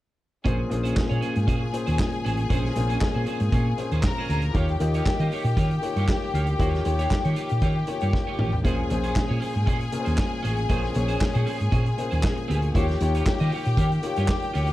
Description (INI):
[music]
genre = disco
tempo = 117 BPM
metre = 4/4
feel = straight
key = Bb dorian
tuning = A4 = 440 Hz
[part]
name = electric guitar at the edge of break-up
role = accompaniment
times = 0.4-14.7 s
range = Db4 to Eb5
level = -35 LUFS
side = right 6 dB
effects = lush chorus
[part]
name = warm grand piano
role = accompaniment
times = 0.4-14.7 s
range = Bb2 to Eb5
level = -30 LUFS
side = left 3 dB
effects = none
[part]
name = clear studio string section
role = second line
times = 0.5-14.7 s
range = G4 to Bb5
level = -31 LUFS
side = left 4 dB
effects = none
[part]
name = hollow-body short-scale fingered electric bass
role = bass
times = 0.5-14.7 s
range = A1 to Eb3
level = -24 LUFS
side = equal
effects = none
[part]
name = vintage drum kit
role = drums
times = 0.5-14.7 s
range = handclaps, hi-hat, kick drum, snare drum, toms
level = -26 LUFS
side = equal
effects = none
[sound]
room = studio reverb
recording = dark, warm production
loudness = -22 LUFS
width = side -15 dB against mid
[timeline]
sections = 0.5-14.7 A section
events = drum fill 8.1-8.6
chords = 0.5 Bbm9; 4.5 Eb9; 8.6 Bbm9; 12.8 Eb9